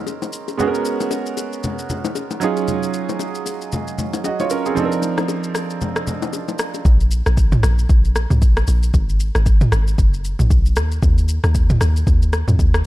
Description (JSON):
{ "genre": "amapiano", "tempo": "115 BPM", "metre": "4/4", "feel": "swing 58% on 16ths", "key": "unclear", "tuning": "A4 = 440 Hz", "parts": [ { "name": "clear baby grand piano", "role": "accompaniment", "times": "0.0-6.9 s", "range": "F3 to Eb5", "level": "-22 LUFS", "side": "right 5 dB", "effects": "none" }, { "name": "deep house drum kit", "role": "drums", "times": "0.1-12.8 s", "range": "kick drum, rim click, shaker, toms", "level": "-18 LUFS", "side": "equal", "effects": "none" }, { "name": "bongos and congas", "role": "percussion", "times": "0.1-6.8 s", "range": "none", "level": "-26 LUFS", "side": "left 5 dB", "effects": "none" }, { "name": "deep log drum bass", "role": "bass", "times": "6.9-12.8 s", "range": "Gb1 to F2", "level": "-16 LUFS", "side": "equal", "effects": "none" } ], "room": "little or no reverb", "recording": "dark, warm production", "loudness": "-16 LUFS", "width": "side -16 dB against mid", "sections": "0.0-6.9 A section; 6.9-12.9 B section", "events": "drop 6.9-12.9", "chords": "0.0 Bbm11; 0.6 Abm11; 2.4 Ebm11; 4.8 Cm11; 6.9 N.C.; 8.9 Abm7; 10.8 N.C." }